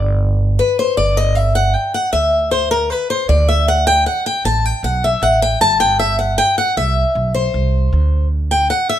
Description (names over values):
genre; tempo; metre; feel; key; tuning
bluegrass; 155 BPM; 3/4; straight; G major; A4 = 442 Hz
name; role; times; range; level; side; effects
upright bass; bass; 0.0-8.7 s; G1 to D2; -17 LUFS; right 1 dB; none
picked swing-style acoustic guitar; accompaniment; 0.6-9.0 s; Bb4 to A5; -15 LUFS; left 1 dB; none
room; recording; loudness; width
moderate studio reverb, RT60 0.7 s; none; -13 LUFS; side -11 dB against mid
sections
1.0-9.0 A section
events
steel-string acoustic guitar solo 0.0-9.0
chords
0.0 Gadd11; 1.0 G5; 3.3 D5; 5.6 Emadd9/G; 6.8 C; 7.9 D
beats
0.20 0.59 | 0.97 1.36 1.75 | 2.13 2.52 2.90 | 3.29 3.68 4.07 | 4.45 4.84 5.22 | 5.61 6.00 6.38 | 6.77 7.16 7.54 | 7.93 8.31 8.70